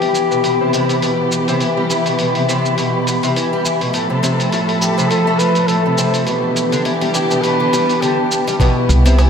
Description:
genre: folktronica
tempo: 103 BPM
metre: 4/4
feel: swing 56% on 16ths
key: C major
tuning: A4 = 441 Hz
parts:
  - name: warm flugelhorn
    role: melody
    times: 0.0-1.3, 4.8-8.5 s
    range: G4 to B4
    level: -20 LUFS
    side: left 1 dB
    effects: ping-pong delay
  - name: warm string quartet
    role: sustained chords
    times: 0.0-9.3 s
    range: E3 to A4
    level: -19 LUFS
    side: left 1 dB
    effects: none
  - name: fingerpicked twelve-string acoustic guitar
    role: arpeggios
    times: 0.0-9.3 s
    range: A2 to A3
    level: -19 LUFS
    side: left 1 dB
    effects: analog chorus, low-pass filter, ping-pong delay
  - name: electronic hi-hat, cabasa and woodblock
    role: drums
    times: 0.0-9.3 s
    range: none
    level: -24 LUFS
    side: equal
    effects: none
  - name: flickering grainy texture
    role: texture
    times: 0.1-8.6 s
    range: B5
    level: -26 LUFS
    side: right 3 dB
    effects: built-in reverb
  - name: electronic kick drum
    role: drums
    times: 8.6-8.7 s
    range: none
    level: -14 LUFS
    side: right 1 dB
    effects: none
  - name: upright bass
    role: bass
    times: 8.9-9.3 s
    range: C2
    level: -10 LUFS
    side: equal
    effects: none
room: wet cathedral reverb, RT60 5.7 s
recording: dreamy mix soaked in reverb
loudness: -14 LUFS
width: side -7 dB against mid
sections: 0.0-8.6 A section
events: none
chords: 0.0 Cmaj7; 3.9 F; 6.3 Em7; 8.6 Cmaj7

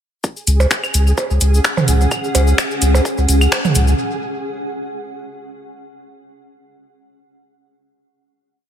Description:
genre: minimal techno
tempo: 128 BPM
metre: 4/4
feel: swing 55% on 16ths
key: unclear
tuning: A4 = 439 Hz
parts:
  - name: electronic kick drum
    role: drums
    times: 0.2-3.6 s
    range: none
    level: -25 LUFS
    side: equal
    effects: high-pass filter on kick, high-pass filter on room
  - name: cabasa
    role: percussion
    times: 0.2-4.0 s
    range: none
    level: -26 LUFS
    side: left 5 dB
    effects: tape echo
  - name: flickering grainy texture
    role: texture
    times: 0.5-4.0 s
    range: G#4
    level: -28 LUFS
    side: right 2 dB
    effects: built-in reverb, sidechain pumping
  - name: granular cloud pad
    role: texture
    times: 1.0-4.0 s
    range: C#4 to F#5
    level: -23 LUFS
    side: equal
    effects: built-in reverb, sidechain pumping
  - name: saturated sub bass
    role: bass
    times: 0.5-3.9 s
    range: C#2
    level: -13 LUFS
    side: equal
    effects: sidechain pumping
  - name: house drum kit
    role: drums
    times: 0.5-3.9 s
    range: finger snaps, hi-hat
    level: -20 LUFS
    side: equal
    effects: none
  - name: electronic percussion blips, claves and toms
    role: percussion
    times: 0.6-3.7 s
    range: none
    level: -21 LUFS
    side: right 4 dB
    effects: overdrive, tape echo
room: light reverb, digital ambience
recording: echo-heavy mix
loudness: -14 LUFS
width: side -9 dB against mid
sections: 0.2-4.0 build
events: build-up 0.2-4.0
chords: 0.2 C#sus4

